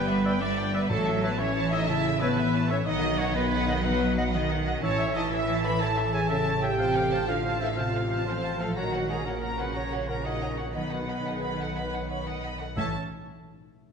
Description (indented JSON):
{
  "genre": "cinematic",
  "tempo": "122 BPM (dotted quarters)",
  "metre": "12/8",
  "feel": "straight",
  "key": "A lydian",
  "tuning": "A4 = 440 Hz",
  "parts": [
    { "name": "rich symphonic violin section", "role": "melody", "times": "0.0-13.0 s", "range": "D#5 to B5", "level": "-35 LUFS", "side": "left 1 dB", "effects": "none" },
    { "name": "flute section", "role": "second line", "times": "0.0-13.0 s", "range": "F#4 to B5", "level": "-36 LUFS", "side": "equal", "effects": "none" },
    { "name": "rich symphonic violin section", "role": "second line", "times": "0.0-13.0 s", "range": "F#4 to B5", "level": "-39 LUFS", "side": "left 1 dB", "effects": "none" },
    { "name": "warm symphonic viola section", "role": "accompaniment", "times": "0.0-13.0 s", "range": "C#4 to F#5", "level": "-37 LUFS", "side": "right 3 dB", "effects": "none" },
    { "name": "mellow French horn section", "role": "sustained chords", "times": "0.0-12.9 s", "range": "F#3 to B4", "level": "-32 LUFS", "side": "left 4 dB", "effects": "none" },
    { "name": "concert harp", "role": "arpeggios", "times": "0.0-13.0 s", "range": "G2 to A4", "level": "-38 LUFS", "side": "left 10 dB", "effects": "none" },
    { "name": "clear trumpet", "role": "stabs", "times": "0.0-12.9 s", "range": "F#4 to B5", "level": "-35 LUFS", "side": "right 3 dB", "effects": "none" },
    { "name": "clear symphonic double bass section", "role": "bass", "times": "0.0-12.9 s", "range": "G1 to B1", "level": "-33 LUFS", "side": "right 2 dB", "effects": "none" },
    { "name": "rich symphonic cello section", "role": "bass", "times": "0.0-13.0 s", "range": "A2 to G3", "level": "-32 LUFS", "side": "right 4 dB", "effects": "none" },
    { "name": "clear oboe", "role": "second line", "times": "0.3-12.9 s", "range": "E5 to F#5", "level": "-39 LUFS", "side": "equal", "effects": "none" },
    { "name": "mellow clarinet", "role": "second line", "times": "0.3-12.9 s", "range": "C5 to D#5", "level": "-40 LUFS", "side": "left 2 dB", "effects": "none" },
    { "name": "timpani", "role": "percussion", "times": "0.9-1.4, 12.8-12.9 s", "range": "A2", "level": "-36 LUFS", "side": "equal", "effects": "none" }
  ],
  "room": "moderate scoring stage reverb, RT60 1.6 s",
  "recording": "nothing above 10.5 kHz",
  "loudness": "-25 LUFS",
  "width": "side -6 dB against mid",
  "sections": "0.0-12.8 A section; 12.8-13.9 B section",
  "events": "none",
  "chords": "0.0 G6; 0.9 A; 2.9 B; 4.8 A; 6.8 F/A; 8.8 F#/A#; 10.8 B; 12.8 A",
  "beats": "0.41 | 0.90 1.39 1.88 2.37 | 2.86 3.35 3.84 4.33 | 4.83 5.32 5.81 6.30 | 6.79 7.28 7.77 8.27 | 8.76 9.25 9.75 10.25 | 10.75 11.26 11.76 12.27 | 12.77"
}